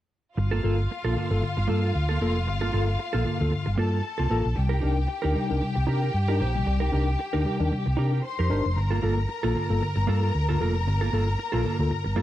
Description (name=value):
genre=disco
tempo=114 BPM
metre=4/4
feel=swing 56% on 16ths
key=G minor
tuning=A4 = 440 Hz
part: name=clear studio string section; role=second line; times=0.4-12.2 s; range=F4 to C6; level=-32 LUFS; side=left 3 dB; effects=none
part: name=mellow tine electric piano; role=accompaniment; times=0.4-12.2 s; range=G2 to Bb4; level=-30 LUFS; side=left 3 dB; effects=medium stereo tremolo
part: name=semi-hollow electric guitar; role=accompaniment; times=0.4-12.2 s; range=Bb3 to C5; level=-32 LUFS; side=right 7 dB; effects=none
part: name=hollow-body short-scale fingered electric bass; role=bass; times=0.4-12.2 s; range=F1 to C3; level=-25 LUFS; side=equal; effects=none
room=light reverb, digital ambience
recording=dark, warm production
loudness=-23 LUFS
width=side -13 dB against mid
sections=0.4-12.2 A section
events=none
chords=0.4 Gm9; 4.6 Cm7; 8.8 Gm9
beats=| 0.38 0.90 1.43 1.95 | 2.48 3.00 3.52 4.05 | 4.57 5.10 5.62 6.14 | 6.67 7.19 7.72 8.24 | 8.77 9.29 9.81 10.34 | 10.86 11.38 11.91